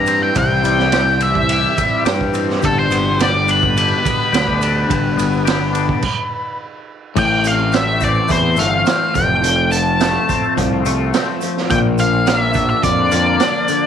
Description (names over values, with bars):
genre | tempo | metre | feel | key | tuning
psychedelic rock | 106 BPM | 4/4 | straight | unclear | A4 = 441 Hz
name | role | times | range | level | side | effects
octave-fuzz lead guitar | melody | 0.0-13.9 s | A4 to Bb5 | -18 LUFS | left 1 dB | wah, distortion, slapback echo
sweeping resonant pad | sustained chords | 0.0-13.9 s | B2 to F4 | -25 LUFS | right 11 dB | chorus
twangy electric guitar | riff | 0.0-13.9 s | F2 to G4 | -21 LUFS | left 13 dB | rotary speaker
fuzz picked electric bass | bass | 0.0-13.4 s | F1 to G2 | -20 LUFS | equal | overdrive
raw garage drum kit | drums | 0.1-13.8 s | crash cymbal, hi-hat, kick drum, ride cymbal, snare drum | -21 LUFS | right 5 dB | none
tube shaker | percussion | 0.1-13.8 s | none | -40 LUFS | right 15 dB | none
room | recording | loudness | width
studio reverb | 1960s-style stereo with parts hard left and right | -13 LUFS | side -8 dB against mid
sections
0.0-7.2 A section; 7.2-13.9 B section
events
stop 6.0-7.2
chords
0.0 C; 2.6 G; 7.2 Am; 9.2 F; 11.7 Bb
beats
| 0.36 0.93 1.50 2.06 | 2.63 3.20 3.77 4.33 | 4.90 5.47 6.04 6.60 | 7.17 7.74 8.30 8.87 | 9.44 10.00 10.57 11.14 | 11.70 12.27 12.83 13.40